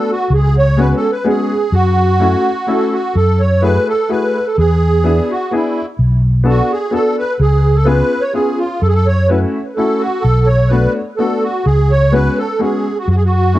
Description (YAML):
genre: musette waltz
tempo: 127 BPM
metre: 3/4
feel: straight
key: F# minor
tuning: A4 = 439 Hz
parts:
  - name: musette accordion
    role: melody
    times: 0.0-13.6 s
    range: E4 to C#5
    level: -16 LUFS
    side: right 2 dB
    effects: analog delay
  - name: clear upright piano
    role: accompaniment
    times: 0.0-13.6 s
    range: G#3 to A4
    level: -17 LUFS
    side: left 2 dB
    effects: none
  - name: mellow fretless electric bass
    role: bass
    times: 0.3-13.6 s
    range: B1 to F#2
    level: -12 LUFS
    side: equal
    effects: ensemble chorus
room: light reverb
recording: cassette tape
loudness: -12 LUFS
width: side -15 dB against mid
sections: 0.0-3.1 A section; 3.1-13.6 A section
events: none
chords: 0.3 C#7sus4; 1.7 F#m7; 3.1 F#m9; 4.6 E7; 6.0 Bm7; 7.4 C#7; 8.8 F#m7; 10.2 Bm7; 11.7 C#7sus4; 13.1 N.C.